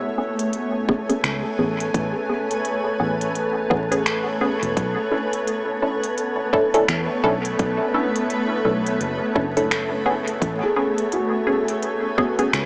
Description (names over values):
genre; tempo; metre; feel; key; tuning
ambient dub; 85 BPM; 4/4; swing 60% on 16ths; unclear; A4 = 440 Hz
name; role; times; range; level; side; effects
granular cloud pad; sustained chords; 0.0-12.7 s; A3 to G#5; -28 LUFS; equal; built-in reverb
felt-muted upright piano; arpeggios; 0.0-1.4, 10.6-12.7 s; E4 to G#4; -30 LUFS; equal; tape echo
wind-like tuned noise texture; texture; 0.1-12.7 s; A4; -31 LUFS; equal; built-in reverb
filtered dub chord stab; stabs; 0.2-12.5 s; B3 to A4; -26 LUFS; equal; phaser, dub echo
organic electronic drum kit; drums; 0.4-12.7 s; finger snaps, hi-hat; -30 LUFS; equal; overdrive, dub echo
electronic kick drum; drums; 0.9-12.3 s; none; -29 LUFS; equal; overdrive
fingered electric bass; bass; 1.2-12.7 s; E1 to E2; -31 LUFS; equal; none
room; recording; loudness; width
moderate huge ambient reverb, RT60 6.7 s; vinyl crackle, small speaker sound; -22 LUFS; mono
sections
0.0-12.7 A section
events
filter sweep on synth stab 0.0-12.7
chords
0.0 Amaj9; 4.8 Bm11; 10.4 Amaj9